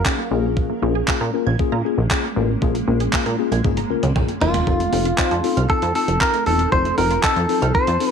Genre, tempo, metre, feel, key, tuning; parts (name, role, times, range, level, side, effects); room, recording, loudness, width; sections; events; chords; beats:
dance-pop; 117 BPM; 4/4; straight; Bb minor; A4 = 439 Hz
direct-recorded clean electric guitar; melody; 0.0, 4.4-8.1 s; F4 to C5; -20 LUFS; right 1 dB
granular cloud pad; sustained chords; 0.0-8.1 s; F3 to F5; -29 LUFS; equal; built-in reverb, sidechain pumping
plucky analog bass; bass; 0.0-8.0 s; E1 to Bb2; -22 LUFS; right 1 dB; sidechain pumping
mellow tine electric piano; accompaniment; 0.1-8.1 s; Bb3 to C5; -24 LUFS; left 14 dB; sidechain pumping
resonant blip pluck; arpeggios; 0.1-8.0 s; Eb3 to Ab6; -30 LUFS; right 14 dB; chorus, sidechain pumping, tape echo
gated 80s digital drum machine; drums; 0.1-8.1 s; handclaps, hi-hat, kick drum, toms; -22 LUFS; right 1 dB; gated reverb
light reverb, digital ambience; 1960s-style stereo with parts hard left and right; -17 LUFS; side -6 dB against mid
0.0-8.1 A section
drum fill 3.6-4.7
0.3 Bbm7; 4.7 F7
0.06 | 0.57 1.08 1.59 2.11 | 2.62 3.13 3.65 4.16 | 4.67 5.18 5.70 6.21 | 6.72 7.24 7.75